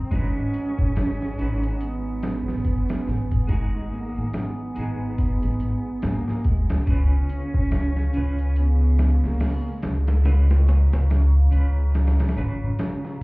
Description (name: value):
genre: trip hop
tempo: 71 BPM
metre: 4/4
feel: swing 59% on 16ths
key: unclear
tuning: A4 = 444 Hz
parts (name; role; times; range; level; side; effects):
- dark cello; melody; 0.0-11.5 s; Ab3 to Db4; -30 LUFS; right 2 dB; dub echo
- clean electric guitar; accompaniment; 0.0-13.2 s; Db3 to Cb5; -33 LUFS; equal; tremolo
- warbly tape-like pad; sustained chords; 0.0-13.2 s; Ab4 to Eb6; -41 LUFS; equal; chorus, built-in reverb, vintage 12-bit sampler grit
- upright bass; bass; 0.0-12.8 s; Ab1 to Ab2; -21 LUFS; equal; none
- dusty soul sampler-style drum kit; drums; 0.1-13.2 s; hi-hat, kick drum, snare drum; -26 LUFS; equal; none
room: digital ambience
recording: heard muffled through a wall, club reverb, EQ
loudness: -20 LUFS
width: side -24 dB against mid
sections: 0.0-13.2 A section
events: none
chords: 0.1 Abm7; 6.9 Db7